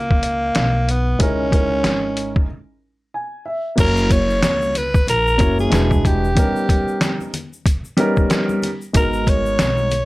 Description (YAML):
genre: hip hop, jazz-hop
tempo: 93 BPM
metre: 4/4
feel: swing 59% on 16ths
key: C# dorian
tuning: A4 = 440 Hz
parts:
  - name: growling alto saxophone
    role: melody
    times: 0.0-10.1 s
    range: A#3 to C#5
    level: -20 LUFS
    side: equal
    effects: none
  - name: upright bass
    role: bass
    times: 0.0-10.1 s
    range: E1 to C#2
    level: -22 LUFS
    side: equal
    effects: none
  - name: trip hop sampler-style drum kit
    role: drums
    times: 0.1-10.1 s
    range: crash cymbal, hi-hat, kick drum, snare drum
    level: -18 LUFS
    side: equal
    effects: none
  - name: dark concert grand piano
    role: accompaniment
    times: 1.2-9.9 s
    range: G3 to G#5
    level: -21 LUFS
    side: equal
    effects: none
  - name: egg shaker and congas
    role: percussion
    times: 3.8-10.1 s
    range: none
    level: -33 LUFS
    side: left 4 dB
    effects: none
room: light reverb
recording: none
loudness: -16 LUFS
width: side -19 dB against mid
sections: 0.0-3.8 A section; 3.8-10.1 B section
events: break 2.5-3.8, 6.4-8.9; grand piano fill 2.8-3.8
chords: 0.0 G#madd9 (rootless); 1.2 C#m69; 3.8 F#7; 5.7 E9; 6.4 D#7b13/G; 8.9 G#m9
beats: 0.56 | 1.21 1.85 2.50 3.14 | 3.79 4.43 5.08 5.72 | 6.37 7.01 7.66 8.30 | 8.95 9.59